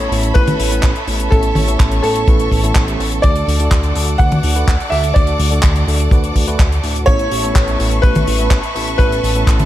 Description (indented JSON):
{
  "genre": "italo disco",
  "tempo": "125 BPM",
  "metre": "4/4",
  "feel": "straight",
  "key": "D major",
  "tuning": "A4 = 440 Hz",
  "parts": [
    { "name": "bright grand piano", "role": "melody", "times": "0.0-9.7 s", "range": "A4 to F#5", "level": "-20 LUFS", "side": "equal", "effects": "tape echo" },
    { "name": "rich studio string section", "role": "sustained chords", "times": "0.0-9.7 s", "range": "A4 to D6", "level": "-24 LUFS", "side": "equal", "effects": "none" },
    { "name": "tine electric piano", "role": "stabs", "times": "0.0-9.7 s", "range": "A2 to B4", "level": "-22 LUFS", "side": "right 2 dB", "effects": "fast stereo tremolo" },
    { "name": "chorused synth bass", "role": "bass", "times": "0.0-9.7 s", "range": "A1 to D2", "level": "-18 LUFS", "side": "equal", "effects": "none" },
    { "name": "damped 70s drum kit", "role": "drums", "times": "0.0-9.7 s", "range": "handclaps, hi-hat, toms", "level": "-21 LUFS", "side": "left 1 dB", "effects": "gated reverb" },
    { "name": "kick drum", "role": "drums", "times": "0.4-9.6 s", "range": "none", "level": "-13 LUFS", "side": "equal", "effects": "none" }
  ],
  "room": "studio ambience",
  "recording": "vinyl crackle",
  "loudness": "-12 LUFS",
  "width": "side -13 dB against mid",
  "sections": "0.0-9.7 A section",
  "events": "none",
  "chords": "0.0 Aadd9; 3.2 D; 7.1 Aadd9"
}